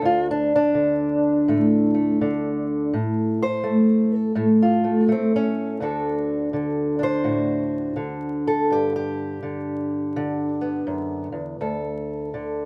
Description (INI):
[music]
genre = acoustic country blues, solo or duo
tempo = 83 BPM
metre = 4/4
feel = swing 63% on 8ths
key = D mixolydian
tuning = A4 = 440 Hz
[part]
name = fingerpicked old ladder-braced acoustic guitar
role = solo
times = 0.0-12.7 s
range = D2 to C5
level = -22 LUFS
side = equal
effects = none
[sound]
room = moderate booth ambience, RT60 0.3 s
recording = dark, warm production, vinyl crackle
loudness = -22 LUFS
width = mono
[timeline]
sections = 0.0-5.8 A section; 5.8-12.7 B section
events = steel-string acoustic guitar solo 5.8-12.7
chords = 0.0 D5; 2.9 N.C.; 5.8 D; 8.7 G; 11.6 D5